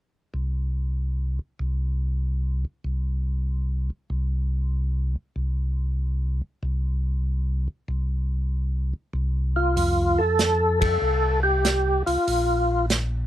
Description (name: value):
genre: soul jazz organ trio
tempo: 96 BPM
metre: 4/4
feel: swing 68% on 8ths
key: F major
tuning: A4 = 438 Hz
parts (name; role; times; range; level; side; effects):
- mellow tonewheel organ; bass; 0.3-13.3 s; Bb1 to F2; -24 LUFS; equal; slow rotary speaker
- percussive tonewheel organ; melody; 9.6-12.9 s; F4 to A4; -21 LUFS; equal; overdrive, chorus vibrato, slow rotary speaker
- warm soul drum kit; drums; 9.8-13.1 s; hi-hat, kick drum, ride cymbal, snare drum; -27 LUFS; right 2 dB; none
room: little or no reverb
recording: none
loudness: -22 LUFS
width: side -13 dB against mid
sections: 0.0-9.8 A section; 9.8-13.3 B section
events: band accent 10.7-11.0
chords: 0.0 N.C.; 9.8 Fadd9; 12.3 Bb5